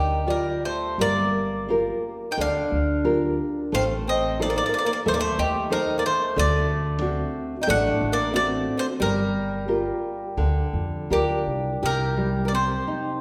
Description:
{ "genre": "fado-style ballad", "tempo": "80-93 BPM", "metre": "4/4", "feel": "rubato", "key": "G minor", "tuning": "A4 = 440 Hz", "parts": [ { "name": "bowl-back mandolin", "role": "melody", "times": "0.0-13.2 s", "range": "G4 to G5", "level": "-29 LUFS", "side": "equal", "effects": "none" }, { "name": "picked twelve-string acoustic guitar", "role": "second line", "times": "0.0-13.2 s", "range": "Eb3 to Bb4", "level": "-31 LUFS", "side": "equal", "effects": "none" }, { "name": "nylon-string guitar", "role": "accompaniment", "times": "0.0-13.2 s", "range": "C3 to D5", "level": "-29 LUFS", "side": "equal", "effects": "none" }, { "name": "upright bass", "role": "bass", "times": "0.0-12.7 s", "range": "G1 to F2", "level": "-30 LUFS", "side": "equal", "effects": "none" } ], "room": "wet recital hall reverb, RT60 1.5 s", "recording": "recorded in a church or concert hall", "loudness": "-24 LUFS", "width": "mono", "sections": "1.0-11.8 A section; 11.8-13.2 B section", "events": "none", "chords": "0.0 Gm7; 3.7 Adim; 6.4 D7; 9.0 Gm7; 11.8 Cm", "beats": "0.26 | 0.98 1.68 2.38 3.05 | 3.72 4.40 5.06 5.71 | 6.36 7.02 7.67 8.33 | 9.00 9.68 10.38 11.11 | 11.84 12.54" }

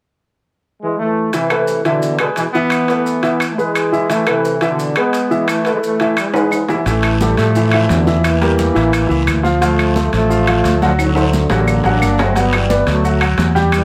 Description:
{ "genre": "latin, salsa", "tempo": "174 BPM", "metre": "4/4", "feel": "straight", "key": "A harmonic minor, A minor from 6.9 s", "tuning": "A4 = 441 Hz", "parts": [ { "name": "bright trombone section", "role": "melody", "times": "0.8-13.8 s", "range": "B2 to D4", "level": "-20 LUFS", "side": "equal", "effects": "none" }, { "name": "clear upright piano", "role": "accompaniment", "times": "1.3-13.8 s", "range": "E3 to G5", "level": "-20 LUFS", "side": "equal", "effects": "none" }, { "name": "maracas", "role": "percussion", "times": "1.3-13.8 s", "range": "none", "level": "-37 LUFS", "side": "equal", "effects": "none" }, { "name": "timbales", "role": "percussion", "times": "1.3-13.8 s", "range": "none", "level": "-24 LUFS", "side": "equal", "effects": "none" }, { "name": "claves", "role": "percussion", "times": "1.5-13.8 s", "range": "none", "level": "-25 LUFS", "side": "equal", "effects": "none" }, { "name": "fingered electric bass", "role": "bass", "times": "6.9-13.8 s", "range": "G1 to A2", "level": "-19 LUFS", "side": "equal", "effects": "none" }, { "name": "congas", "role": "percussion", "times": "6.9-13.8 s", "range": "none", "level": "-26 LUFS", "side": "equal", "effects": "none" }, { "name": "guiro", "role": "percussion", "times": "6.9-13.8 s", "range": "none", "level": "-33 LUFS", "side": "equal", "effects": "none" } ], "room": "moderate studio reverb, RT60 0.8 s", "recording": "none", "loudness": "-15 LUFS", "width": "mono", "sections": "0.0-1.3 A section; 1.3-6.9 B section; 6.9-13.8 C section", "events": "drum fill 6.3-6.9, 11.0-12.4", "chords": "0.0 N.C.; 1.3 Amadd9; 2.0 E; 2.7 Asus2; 3.4 E; 4.1 Amadd9; 4.8 E; 5.5 Asus2; 6.2 E; 6.9 A5; 8.2 Edim; 8.9 A; 9.6 Dm7; 11.0 D7; 12.4 Gmaj9", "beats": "0.29 0.64 0.98 | 1.33 1.67 2.02 2.36 | 2.71 3.06 3.40 3.75 | 4.09 4.44 4.78 5.13 | 5.47 5.82 6.17 6.51 | 6.86 7.20 7.55 7.89 | 8.24 8.58 8.93 9.27 | 9.62 9.96 10.30 10.65 | 10.99 11.33 11.68 12.02 | 12.36 12.70 13.05 13.39 | 13.73" }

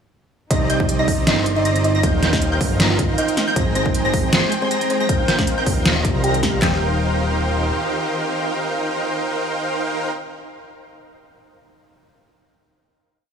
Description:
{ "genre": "future bass", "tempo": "157 BPM", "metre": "4/4", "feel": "swing 54% on 16ths, half-time", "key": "Eb major", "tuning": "A4 = 443 Hz", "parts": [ { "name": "kalimba", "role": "melody", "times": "0.5-10.1 s", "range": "C4 to G5", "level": "-23 LUFS", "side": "right 1 dB", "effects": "sidechain pumping, digital delay" }, { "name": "dark symphonic string section", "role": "sustained chords", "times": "0.5-10.1 s", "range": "C3 to G5", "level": "-30 LUFS", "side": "left 1 dB", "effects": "sidechain pumping" }, { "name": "wide unison pluck", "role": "arpeggios", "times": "0.5-10.1 s", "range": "G6 to C7", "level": "-27 LUFS", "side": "equal", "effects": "wide subtle chorus, sidechain pumping" }, { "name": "dense compressed supersaw", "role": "riff", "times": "0.5-10.1 s", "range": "Ab3 to C6", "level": "-24 LUFS", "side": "right 1 dB", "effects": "vintage 12-bit sampler grit, sidechain pumping, digital delay" }, { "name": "fat analog bass", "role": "bass", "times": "0.5-7.7 s", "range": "Eb1 to C2", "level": "-22 LUFS", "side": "equal", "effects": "sidechain pumping" }, { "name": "dubstep drum kit", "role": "drums", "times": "0.5-6.7 s", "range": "handclaps, kick drum, snare drum", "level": "-21 LUFS", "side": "equal", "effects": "none" }, { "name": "dubstep drum kit", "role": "drums", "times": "0.5-6.5 s", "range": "hi-hat, snare drum", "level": "-21 LUFS", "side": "equal", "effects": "none" } ], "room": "light reverb, digital ambience", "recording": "studio reverb", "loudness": "-17 LUFS", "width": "side -7 dB against mid", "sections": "0.5-6.6 drop; 6.6-9.7 final chord", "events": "drop 0.5-6.6", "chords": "0.5 Cm7; 2.0 Eb69; 3.6 Abmaj7; 5.1 Eb69", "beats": "| 0.51 0.89 1.27 1.65 | 2.03 2.42 2.80 3.18 | 3.56 3.94 4.33 4.71 | 5.09 5.47 5.86 6.24 | 6.62 7.00 7.38 7.77 | 8.15 8.53 8.91 9.30" }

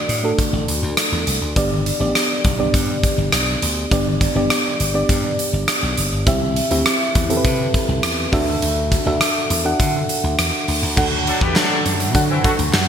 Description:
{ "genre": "1980s-style pop", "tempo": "102 BPM", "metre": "4/4", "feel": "straight", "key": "unclear", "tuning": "A4 = 444 Hz", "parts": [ { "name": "mellow FM electric piano", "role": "accompaniment", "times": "0.0-12.9 s", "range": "A3 to F#5", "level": "-21 LUFS", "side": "right 1 dB", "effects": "chorus" }, { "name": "slap bass", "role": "bass", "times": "0.1-12.9 s", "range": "F#1 to D3", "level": "-22 LUFS", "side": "equal", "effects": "none" }, { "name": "big rock drum kit", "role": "drums", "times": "0.1-12.9 s", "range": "crash cymbal, hi-hat, kick drum, rim click, snare drum", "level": "-19 LUFS", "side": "equal", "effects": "gated reverb" }, { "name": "phased analog pad", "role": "sustained chords", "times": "11.0-12.9 s", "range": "D3 to F#4", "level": "-28 LUFS", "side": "right 2 dB", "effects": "phaser, chorus" }, { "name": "warm horn section", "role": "stabs", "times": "11.3-12.5 s", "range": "D3 to B4", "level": "-22 LUFS", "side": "left 2 dB", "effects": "none" }, { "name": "group handclap", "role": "percussion", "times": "11.6-12.9 s", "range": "none", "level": "-29 LUFS", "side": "left 3 dB", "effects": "none" } ], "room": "moderate plate reverb, RT60 1.9 s, small room ambience", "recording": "bright 1980s-style digital production", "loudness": "-16 LUFS", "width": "side -8 dB against mid", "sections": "0.0-11.0 A section; 11.0-12.9 B section", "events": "none", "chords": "0.0 D; 1.6 G; 6.3 C; 8.3 Dadd9; 11.0 D", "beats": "0.39 0.97 | 1.56 2.15 2.74 3.33 | 3.92 4.50 5.09 5.68 | 6.27 6.86 7.44 8.03 | 8.62 9.21 9.80 10.39 | 10.97 11.56 12.15 12.74" }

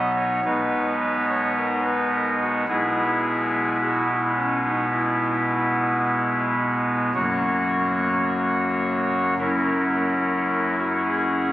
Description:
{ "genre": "classical, chorale-style piece for pipe organ", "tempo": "54 BPM", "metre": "4/4", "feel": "rubato", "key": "unclear", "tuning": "A4 = 437 Hz", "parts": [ { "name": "pipe organ, soft reed", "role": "solo", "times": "0.0-11.5 s", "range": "F#1 to D#5", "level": "-20 LUFS", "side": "equal", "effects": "none" } ], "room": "wet cathedral reverb, RT60 5.9 s", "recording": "recorded on a phone in the room, studio reverb, compression", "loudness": "-20 LUFS", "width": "side -14 dB against mid", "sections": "0.0-11.5 A section", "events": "none", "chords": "0.4 G#m/B; 2.7 E/B; 7.2 F#; 9.4 F#5", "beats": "0.44 1.57 | 2.69 3.80 4.91 6.03 | 7.15 8.26 9.39 10.51" }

